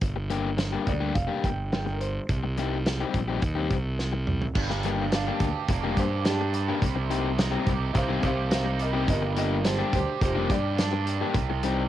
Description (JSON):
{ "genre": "indie rock", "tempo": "106 BPM", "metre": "4/4", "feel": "straight", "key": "unclear", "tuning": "A4 = 440 Hz", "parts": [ { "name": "fuzz fingered electric bass", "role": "bass", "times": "0.0-11.9 s", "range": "F1 to G2", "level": "-28 LUFS", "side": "right 1 dB", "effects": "overdrive" }, { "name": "loose indie drum kit", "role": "drums", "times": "0.0-11.8 s", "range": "crash cymbal, hi-hat, kick drum, snare drum, toms", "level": "-28 LUFS", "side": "equal", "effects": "cassette tape" }, { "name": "overdriven electric guitar", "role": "riff", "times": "0.2-11.8 s", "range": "G3 to G4", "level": "-30 LUFS", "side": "left 8 dB", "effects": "cassette tape" }, { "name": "warm upright piano", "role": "melody", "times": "0.9-11.6 s", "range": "D4 to G5", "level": "-34 LUFS", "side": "right 1 dB", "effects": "cassette tape, analog delay" }, { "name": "biting overdriven guitar", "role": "riff", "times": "4.5-11.9 s", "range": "G2 to G4", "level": "-32 LUFS", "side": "right 11 dB", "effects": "analog chorus, cassette tape" } ], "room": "little or no reverb", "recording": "home recording on cassette", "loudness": "-24 LUFS", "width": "side -12 dB against mid", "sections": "0.0-4.6 A section; 4.6-11.9 B section", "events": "drum fill 4.0-4.6; upright piano solo 4.6-11.9", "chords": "0.0 Gm; 2.3 Cm; 4.6 Gm; 6.8 Cm7; 9.1 Gm; 11.3 Cm" }